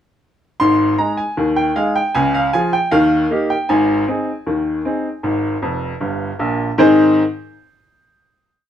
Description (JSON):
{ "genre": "ragtime piano", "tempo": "78 BPM", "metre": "2/4", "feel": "straight", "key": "Ab major", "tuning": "A4 = 440 Hz", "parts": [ { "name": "bright upright piano", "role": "solo", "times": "0.6-7.2 s", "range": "F1 to C6", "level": "-14 LUFS", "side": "equal", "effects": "none" } ], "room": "moderate studio reverb, RT60 0.7 s", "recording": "none", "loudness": "-14 LUFS", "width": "side -10 dB against mid", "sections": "0.6-6.8 A section; 6.8-8.3 final chord", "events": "upright piano fill 5.6-6.8", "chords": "0.6 Ab5; 2.1 Db; 2.9 Eb; 3.7 Ab", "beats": "| 0.60 1.38 | 2.15 2.92 | 3.69 4.46 | 5.24 6.01 | 6.79" }